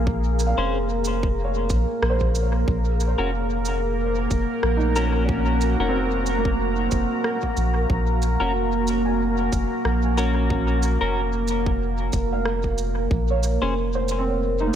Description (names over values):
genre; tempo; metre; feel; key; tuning
ambient dub; 92 BPM; 4/4; swing 56% on 16ths; unclear; A4 = 437 Hz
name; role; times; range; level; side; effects
deep dark ambient pad; sustained chords; 0.0-14.8 s; Bb3 to Bb5; -25 LUFS; right 1 dB; chorus, built-in reverb
felt-muted upright piano; arpeggios; 0.0-14.8 s; Bb3 to Ab5; -31 LUFS; right 2 dB; lush chorus, diffuse ambient delay
soft dub sub bass; bass; 0.0-14.7 s; F1 to Bb1; -24 LUFS; equal; none
electronic kick drum; drums; 0.1-13.3 s; none; -25 LUFS; equal; none
electronic shaker and rim click; drums; 0.4-14.2 s; none; -31 LUFS; equal; dub echo
clean electric guitar; stabs; 0.6-13.7 s; Db4 to C5; -29 LUFS; left 4 dB; analog chorus, dub echo
room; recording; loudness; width
light reverb, digital ambience; none; -20 LUFS; side -9 dB against mid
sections
0.0-14.8 A section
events
none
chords
0.0 Bbm7; 2.7 Gb; 13.1 Bbm7